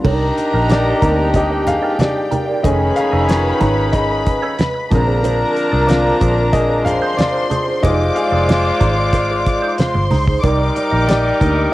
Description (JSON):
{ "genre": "lush 1970s-style soul", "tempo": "92 BPM", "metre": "4/4", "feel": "straight", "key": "C minor", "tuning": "A4 = 440 Hz", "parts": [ { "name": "dark studio string section", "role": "second line", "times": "0.0-11.7 s", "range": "G4 to D6", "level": "-21 LUFS", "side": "equal", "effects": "tape echo" }, { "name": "warm grand piano", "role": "accompaniment", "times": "0.0-11.7 s", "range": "D3 to F5", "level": "-21 LUFS", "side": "left 2 dB", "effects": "none" }, { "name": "mellow electric guitar", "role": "riff", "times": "0.0-11.6 s", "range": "D4 to Eb5", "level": "-24 LUFS", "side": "right 5 dB", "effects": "wah" }, { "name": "vintage muted fingered electric bass", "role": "bass", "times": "0.0-11.7 s", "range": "F1 to D2", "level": "-19 LUFS", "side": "equal", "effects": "none" }, { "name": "damped 70s drum kit", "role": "drums", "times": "0.0-11.6 s", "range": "crash cymbal, hi-hat, kick drum, snare drum", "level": "-18 LUFS", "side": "equal", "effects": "cassette tape" }, { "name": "warm horn section", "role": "stabs", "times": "0.1-11.7 s", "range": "Eb3 to C5", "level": "-19 LUFS", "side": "equal", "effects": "none" }, { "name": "congas", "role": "percussion", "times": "0.1-11.2 s", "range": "none", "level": "-24 LUFS", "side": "right 2 dB", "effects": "none" } ], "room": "light reverb", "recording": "home recording on cassette", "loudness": "-13 LUFS", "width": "side -16 dB against mid", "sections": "0.0-11.7 A section", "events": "grand piano solo 0.0-11.7", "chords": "0.0 Cm9; 2.6 F7alt; 4.9 Bb9; 7.8 Fm7; 10.4 Cm9" }